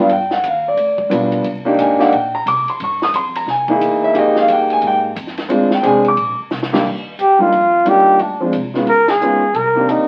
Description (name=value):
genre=jazz, small-group swing and bop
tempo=178 BPM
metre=4/4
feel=swing 63% on 8ths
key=C minor, Eb major from 6.8 s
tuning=A4 = 436 Hz
part: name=warm concert grand piano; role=accompaniment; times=0.0-10.1 s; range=Eb2 to Eb6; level=-17 LUFS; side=equal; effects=none
part: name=upright bass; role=bass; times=0.1-10.1 s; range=Ab1 to Ab2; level=-34 LUFS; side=equal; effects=none
part: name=compact cocktail drum kit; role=drums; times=0.1-10.0 s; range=crash cymbal, hi-hat, kick drum, ride cymbal, snare drum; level=-29 LUFS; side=equal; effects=none
part: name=breathy trumpet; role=melody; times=7.2-10.1 s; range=D4 to Bb4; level=-14 LUFS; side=equal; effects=none
room=wet club reverb, RT60 0.6 s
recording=very old 78 rpm record, vinyl crackle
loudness=-15 LUFS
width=mono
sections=0.0-6.8 A section; 6.8-10.1 B section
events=drum fill 6.5-6.8; band accent 9.0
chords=0.1 G7; 1.4 Cm9; 2.8 Eb13; 3.5 C7alt; 4.1 Fm11; 5.5 Dm7b5; 6.2 Bb69; 6.8 Ebmaj9; 8.2 Dm7b5; 8.9 Db9; 9.5 Cm9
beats=| 0.10 0.44 0.77 1.11 | 1.45 1.79 2.12 2.46 | 2.80 3.14 3.47 3.81 | 4.15 4.48 4.82 5.16 | 5.50 5.83 6.17 6.51 | 6.84 7.18 7.52 7.86 | 8.20 8.53 8.87 9.21 | 9.55 9.88